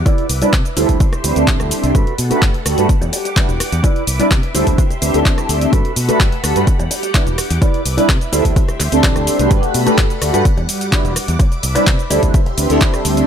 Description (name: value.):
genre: filtered disco house.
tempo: 127 BPM.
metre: 4/4.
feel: straight.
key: unclear.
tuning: A4 = 439 Hz.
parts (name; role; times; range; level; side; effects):
string machine, full ensemble; sustained chords; 0.0-13.3 s; G3 to D6; -25 LUFS; equal; phaser, ensemble chorus, sidechain pumping, low-pass filter.
mellow electric guitar; riff; 0.1-13.2 s; E4 to D5; -21 LUFS; right 2 dB; sidechain pumping, low-pass filter.
electronic kick drum; drums; 0.1-12.9 s; none; -15 LUFS; equal; overdrive.
punchy analog drum machine; drums; 0.1-13.3 s; handclaps, hi-hat, rim click, shaker; -21 LUFS; equal; overdrive, sidechain pumping on hats, sidechain pumping on perc.
modern bright fingered electric bass; bass; 0.3-13.2 s; E1 to C3; -20 LUFS; equal; tube saturation, sidechain pumping, low-pass filter.
mellow synth brass; accompaniment; 0.4-13.3 s; G3 to B4; -19 LUFS; right 1 dB; chorus, phaser, sidechain pumping, low-pass filter.
room: little or no reverb.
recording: none.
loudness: -12 LUFS.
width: side -8 dB against mid.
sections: 0.0-9.5 A section; 9.5-13.3 B section.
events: clean electric guitar fill 8.8-9.5; drop 9.5-13.3.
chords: 0.1 Cmaj9; 0.8 D9sus4; 1.9 Gmaj9; 2.9 Em9; 3.8 Cmaj9; 4.5 D9sus4; 5.7 Gmaj9; 6.7 Em9; 7.6 Cmaj9; 8.3 D9sus4; 9.5 Gmaj9; 10.5 Em9; 11.4 Cmaj9; 12.1 D9sus4.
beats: | 0.06 0.53 1.00 1.48 | 1.95 2.42 2.89 3.37 | 3.84 4.31 4.78 5.25 | 5.73 6.20 6.67 7.14 | 7.62 8.09 8.56 9.04 | 9.51 9.98 10.45 10.93 | 11.40 11.87 12.34 12.81.